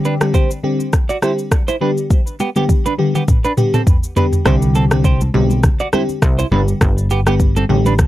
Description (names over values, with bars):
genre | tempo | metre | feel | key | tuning
afrobeats | 102 BPM | 4/4 | swing 55% on 16ths | unclear | A4 = 440 Hz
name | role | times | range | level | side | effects
FM electric piano with soft pad layer | accompaniment | 0.0-7.9 s | D3 to G4 | -18 LUFS | left 1 dB | chorus, phaser
afro-pop drum kit | drums | 0.0-8.1 s | kick drum, rim click, shaker, toms | -15 LUFS | equal | none
clean electric guitar | riff | 0.1-7.9 s | B3 to D5 | -21 LUFS | right 4 dB | wide subtle chorus, analog delay
plucky analog bass | bass | 4.5-8.0 s | G1 to C2 | -16 LUFS | equal | none
congas | percussion | 4.5-8.1 s | none | -23 LUFS | equal | none
room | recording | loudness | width
little or no reverb | dry, gritty hardware recording, cassette tape | -13 LUFS | side -15 dB against mid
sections
0.0-4.5 A section; 4.5-8.1 B section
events
drum fill 2.1-4.5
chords
0.0 Csus2; 1.8 G; 4.5 Csus2; 6.5 G